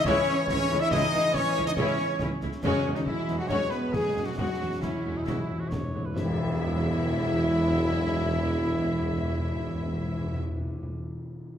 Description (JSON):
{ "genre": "cinematic, heroic adventure film score", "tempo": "138 BPM", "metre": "4/4", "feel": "straight", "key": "E major", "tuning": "A4 = 440 Hz", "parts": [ { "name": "clear symphonic violin section", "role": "melody", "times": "0.0-10.4 s", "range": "C#4 to E5", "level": "-39 LUFS", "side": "left 4 dB", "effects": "none" }, { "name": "dark clarinet", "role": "second line", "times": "0.0-10.4 s", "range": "C#4 to E5", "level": "-38 LUFS", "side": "left 2 dB", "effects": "none" }, { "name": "small flute group", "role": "second line", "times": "0.0-10.4 s", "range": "C#5 to E6", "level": "-38 LUFS", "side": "left 6 dB", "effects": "none" }, { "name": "warm trombone section", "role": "sustained chords", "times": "0.0-10.4 s", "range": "E3 to G#3", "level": "-37 LUFS", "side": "right 3 dB", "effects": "none" }, { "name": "bright trumpet", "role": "stabs", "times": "0.0-10.4 s", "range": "C#4 to E5", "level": "-34 LUFS", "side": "right 2 dB", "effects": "none" }, { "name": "rich symphonic cello section", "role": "bass", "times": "0.0-10.4 s", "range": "C#3 to E4", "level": "-35 LUFS", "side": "right 2 dB", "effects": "none" }, { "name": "concert snare drum, concert bass drum, clash cymbals and concert toms", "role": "drums", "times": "0.0-6.3 s", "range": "none", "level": "-35 LUFS", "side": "equal", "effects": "none" }, { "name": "clear symphonic violin section", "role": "second line", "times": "0.1-10.4 s", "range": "C#4 to E5", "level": "-40 LUFS", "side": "left 2 dB", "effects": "none" }, { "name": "rich symphonic viola section", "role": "accompaniment", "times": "0.1-10.4 s", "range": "G#3 to F#4", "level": "-36 LUFS", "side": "left 1 dB", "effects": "none" }, { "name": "mellow French horn section", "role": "sustained chords", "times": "0.1-10.4 s", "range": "C#4 to E5", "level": "-31 LUFS", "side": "left 3 dB", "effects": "none" }, { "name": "mellow tuba", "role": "bass", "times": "0.1-10.4 s", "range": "E1 to C#2", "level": "-34 LUFS", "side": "right 3 dB", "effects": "none" }, { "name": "rich symphonic double bass section", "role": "bass", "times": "0.1-10.4 s", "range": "C#2 to E2", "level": "-35 LUFS", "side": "right 3 dB", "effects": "none" }, { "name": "timpani", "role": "percussion", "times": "2.6-10.9 s", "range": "E2", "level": "-33 LUFS", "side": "left 1 dB", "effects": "none" }, { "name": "warm cor anglais", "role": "second line", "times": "4.8-6.2 s", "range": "C#4 to C#5", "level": "-41 LUFS", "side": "right 2 dB", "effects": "none" }, { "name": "tam-tam", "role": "percussion", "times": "6.2-7.9 s", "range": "none", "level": "-40 LUFS", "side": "left 3 dB", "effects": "none" } ], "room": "wet recital hall reverb, RT60 1.7 s", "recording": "none", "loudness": "-25 LUFS", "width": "side -9 dB against mid", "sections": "0.0-6.2 A section; 6.2-9.6 B section", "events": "timpani fill 2.6-6.2; band accent 6.2-6.6", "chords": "0.0 C#m; 2.6 Eadd9" }